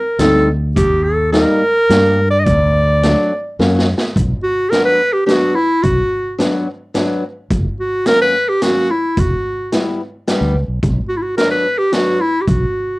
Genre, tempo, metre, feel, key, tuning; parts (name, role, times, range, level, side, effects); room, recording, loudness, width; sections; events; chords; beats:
klezmer; 108 BPM; 3/4; straight; B harmonic minor from 4.2 s; A4 = 440 Hz
bright clarinet; melody; 0.0-13.0 s; E4 to Eb5; -14 LUFS; equal; cassette tape
flamenco guitar; accompaniment; 0.2-12.2 s; F#3 to E4; -18 LUFS; left 1 dB; cassette tape
fingered electric bass; bass; 0.2-12.6 s; E1 to G2; -17 LUFS; equal
street-band drum kit; drums; 0.2-12.6 s; hi-hat, kick drum, snare drum; -20 LUFS; equal; cassette tape
moderate studio reverb, RT60 0.5 s; home recording on cassette; -13 LUFS; side -22 dB against mid
0.0-4.2 A section; 4.2-13.0 B section
speeding up 0.0-13.0; drum fill 3.6-4.2
0.0 Cm; 0.8 Eb; 2.5 D; 3.6 F#; 4.2 Bm; 7.5 F#; 9.2 Em; 10.8 Bm
0.19 | 0.76 1.33 1.90 | 2.46 3.03 3.59 | 4.15 4.71 5.27 | 5.83 6.39 6.95 | 7.50 8.06 8.62 | 9.17 9.72 10.27 | 10.82 11.37 11.92 | 12.47